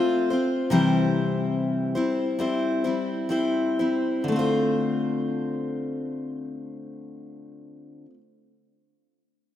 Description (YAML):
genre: folk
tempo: 59-77 BPM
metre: 4/4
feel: straight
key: D minor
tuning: A4 = 440 Hz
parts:
  - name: picked steel-string acoustic guitar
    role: accompaniment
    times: 0.0-8.2 s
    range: C3 to C5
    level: -23 LUFS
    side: left 2 dB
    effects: none
room: moderate lush hall reverb, RT60 3.0 s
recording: rough home demo mix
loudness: -23 LUFS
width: side -11 dB against mid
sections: 0.0-4.3 A section; 4.3-8.4 B section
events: slowing down 0.0-4.3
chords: 0.0 Dm7 (rootless); 0.7 C; 4.3 Dm7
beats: | 0.70 1.53 2.39 3.31 | 4.29 5.31 6.33 7.34